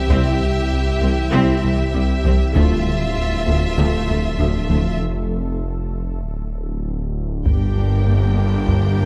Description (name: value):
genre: cinematic, hybrid orchestral and electronic film score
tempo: 98 BPM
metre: 4/4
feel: straight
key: G dorian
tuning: A4 = 440 Hz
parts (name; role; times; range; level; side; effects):
- rich chamber violin section; melody; 0.0-5.0 s; E5; -30 LUFS; equal; none
- rich symphonic violin section; second line; 0.0-9.1 s; F4 to G5; -32 LUFS; equal; none
- granular cloud pad; sustained chords; 0.0-9.1 s; F3 to E5; -31 LUFS; equal; built-in reverb
- swelling detuned saw bass; bass; 0.0-9.1 s; D1 to C2; -25 LUFS; equal; none
- rich chamber viola section; accompaniment; 0.1-9.1 s; F3 to G4; -31 LUFS; equal; none
- mellow French horn section; sustained chords; 0.1-9.1 s; F3 to G4; -31 LUFS; equal; none
- glassy wavetable pluck; arpeggios; 0.1-9.1 s; C3 to D4; -33 LUFS; equal; none
- round analog bass; riff; 0.1-9.1 s; C2 to G3; -27 LUFS; equal; none
- rich symphonic cello section; bass; 0.1-9.1 s; C2 to G2; -26 LUFS; equal; none
- rich symphonic double bass section; bass; 0.1-9.1 s; G1 to D2; -25 LUFS; equal; none
- solo taiko drums; drums; 0.1-9.1 s; none; -24 LUFS; equal; none
room: moderate scoring stage reverb, RT60 1.8 s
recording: none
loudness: -19 LUFS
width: mono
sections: 0.0-7.5 A section; 7.5-9.1 B section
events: break 5.0-7.5; drum fill 6.5-7.5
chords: 0.0 C; 2.6 Dmadd9; 5.0 N.C.; 7.5 Gm